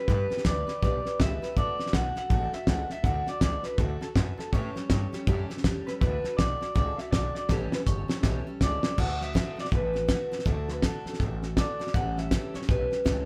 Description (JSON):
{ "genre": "rockabilly", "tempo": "162 BPM", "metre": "4/4", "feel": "swing 61% on 8ths", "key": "D major", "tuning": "A4 = 440 Hz", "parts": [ { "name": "electric guitar through a small old amp", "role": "melody", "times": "0.0-13.3 s", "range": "A4 to F#5", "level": "-35 LUFS", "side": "equal", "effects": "none" }, { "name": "picked steel-string acoustic guitar", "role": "accompaniment", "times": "0.0-13.3 s", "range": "A2 to B4", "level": "-40 LUFS", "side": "equal", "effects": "none" }, { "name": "upright bass", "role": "bass", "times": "0.1-13.3 s", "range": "G1 to A2", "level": "-35 LUFS", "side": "equal", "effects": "none" }, { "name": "cloth-damped thuddy drum kit", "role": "drums", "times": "0.1-13.2 s", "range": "crash cymbal, hi-hat, kick drum, snare drum", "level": "-30 LUFS", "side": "equal", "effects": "none" } ], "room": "moderate studio reverb, RT60 0.7 s", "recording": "band playing live in one room", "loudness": "-28 LUFS", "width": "mono", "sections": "0.0-9.0 A section; 9.0-13.3 B section", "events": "drum fill 7.5-9.0", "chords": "0.1 G; 1.6 D; 4.5 A7; 6.0 D; 7.5 A7; 9.0 D; 11.9 A7" }